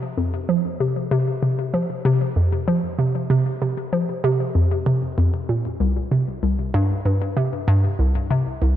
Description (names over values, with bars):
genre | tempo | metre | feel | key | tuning
ambient | 96 BPM | 4/4 | straight | unclear | A4 = 440 Hz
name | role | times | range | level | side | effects
hollow square pluck | solo | 0.0-8.8 s | C2 to F3 | -19 LUFS | equal | chorus, ping-pong delay
room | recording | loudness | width
light reverb | echo-heavy mix | -19 LUFS | side -11 dB against mid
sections
0.0-8.8 A section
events
none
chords
none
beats
0.18 | 0.80 1.43 2.05 2.68 | 3.30 3.93 4.55 5.18 | 5.80 6.43 7.05 7.68 | 8.30